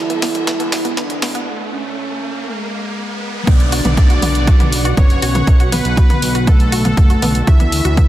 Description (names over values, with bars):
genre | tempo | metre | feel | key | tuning
melodic techno | 120 BPM | 4/4 | straight | B dorian | A4 = 438 Hz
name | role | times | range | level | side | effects
soft octave-layered synth lead | melody | 0.0-8.1 s | G#3 to E4 | -22 LUFS | equal | chorus, sidechain pumping, dub echo
dark studio string section | sustained chords | 0.0-8.1 s | D3 to F#5 | -28 LUFS | equal | sidechain pumping
fat analog bass | bass | 0.0-8.1 s | F#1 to D2 | -20 LUFS | equal | sidechain pumping, high-pass filter
riser and downlifter | sound effects | 0.0-7.5 s | none | -26 LUFS | right 1 dB | none
wide unison pluck | arpeggios | 0.1-8.0 s | B3 to F#4 | -25 LUFS | right 1 dB | cassette tape, sidechain pumping, dub echo
punchy analog drum machine | drums | 0.1-8.1 s | hi-hat, snare drum, toms | -21 LUFS | equal | sidechain pumping on toms, high-pass filter on toms, sidechain pumping on hats, high-pass filter on hats, high-pass filter on snare
soft supersaw | second line | 3.5-8.1 s | A4 to E5 | -23 LUFS | equal | sidechain pumping, dub echo
electronic kick drum | drums | 3.5-8.1 s | none | -10 LUFS | equal | none
room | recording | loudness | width
light reverb, digital ambience | dense, heavily limited modern master, high-pass filter | -12 LUFS | side -14 dB against mid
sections
0.0-3.5 A section; 3.5-8.1 B section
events
build-up 0.0-3.5; drum fill 0.0-1.5; riser 0.0-3.5; filter sweep on synth arpeggio sound 0.0-3.5; break 1.5-3.5; drop 3.5-8.1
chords
0.0 Dadd9; 1.5 N.C.; 3.5 Bm; 7.5 Dadd9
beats
0.47 0.97 | 1.47 1.97 2.47 2.97 | 3.47 3.97 4.47 4.97 | 5.47 5.97 6.47 6.97 | 7.47 7.97